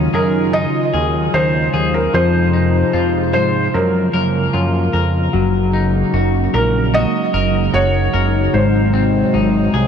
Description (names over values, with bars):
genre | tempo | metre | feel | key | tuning
dream pop | 75 BPM | 4/4 | straight | Gb lydian | A4 = 440 Hz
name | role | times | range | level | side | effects
phased analog pad | sustained chords | 0.0-9.9 s | C3 to Gb4 | -20 LUFS | right 2 dB | phaser, chorus
semi-hollow electric guitar | arpeggios | 0.0-9.9 s | Ab2 to C5 | -19 LUFS | left 5 dB | lush chorus, digital delay
fat analog bass | bass | 0.0-9.9 s | Gb1 to Ab2 | -18 LUFS | right 1 dB | none
felt-muted upright piano | melody | 0.1-9.9 s | Bb4 to Eb5 | -20 LUFS | equal | digital delay
room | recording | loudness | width
light reverb | dark, warm production | -13 LUFS | side -7 dB against mid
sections
0.0-5.3 A section; 5.3-9.9 A section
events
none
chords
0.0 Ebm11; 2.1 Fm7; 3.7 Gbmaj9; 5.3 Gb69; 8.5 Ab7